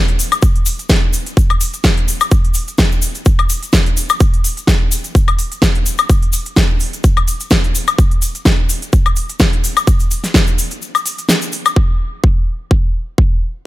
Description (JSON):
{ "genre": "house", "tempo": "127 BPM", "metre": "4/4", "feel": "swing 55% on 16ths", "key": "none", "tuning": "none", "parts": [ { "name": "big-room dance drum kit", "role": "drums", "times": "0.1-11.7 s", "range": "hi-hat, snare drum, woodblock", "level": "-17 LUFS", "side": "left 1 dB", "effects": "none" }, { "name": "cabasa", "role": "percussion", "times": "0.2-11.7 s", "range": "none", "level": "-24 LUFS", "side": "left 5 dB", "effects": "none" }, { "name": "electronic kick drum", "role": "drums", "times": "0.4-13.3 s", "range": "none", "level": "-13 LUFS", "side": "equal", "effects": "none" } ], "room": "little or no reverb", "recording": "none", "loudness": "-12 LUFS", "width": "side -17 dB against mid", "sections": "0.0-11.8 A section; 11.8-13.7 B section", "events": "kick drops out 10.8-11.8", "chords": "none", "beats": "| 0.43 0.90 1.37 1.84 | 2.32 2.79 3.26 3.73 | 4.21 4.68 5.15 5.62 | 6.10 6.57 7.04 7.51 | 7.99 8.46 8.93 9.40 | 9.88 10.35 10.82 11.29 | 11.77 12.24 12.71 13.18" }